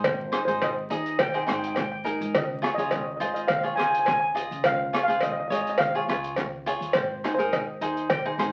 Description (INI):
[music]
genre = calypso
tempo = 104 BPM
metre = 4/4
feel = straight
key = Ab major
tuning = A4 = 440 Hz
[part]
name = cavaquinho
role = accompaniment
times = 0.0-8.5 s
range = Eb4 to Eb5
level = -31 LUFS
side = equal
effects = none
[part]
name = upright bass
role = bass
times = 0.0-8.5 s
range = Ab1 to Db3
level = -41 LUFS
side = equal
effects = none
[part]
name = street-band drum kit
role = drums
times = 0.0-8.5 s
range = hi-hat, kick drum, rim click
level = -36 LUFS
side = equal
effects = none
[part]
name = cowbell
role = percussion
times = 0.0-8.2 s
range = none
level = -29 LUFS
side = equal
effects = none
[part]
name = steel pan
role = melody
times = 0.1-8.5 s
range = C5 to Ab5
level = -30 LUFS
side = equal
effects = none
[sound]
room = wet studio reverb, RT60 0.6 s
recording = very old 78 rpm record, vinyl crackle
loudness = -26 LUFS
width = mono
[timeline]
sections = 0.0-8.5 A section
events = none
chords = 0.0 Ab; 2.3 Dbadd9; 7.0 Abmaj7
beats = | 0.04 0.62 1.19 1.77 | 2.35 2.92 3.50 4.07 | 4.65 5.22 5.80 6.38 | 6.95 7.53 8.10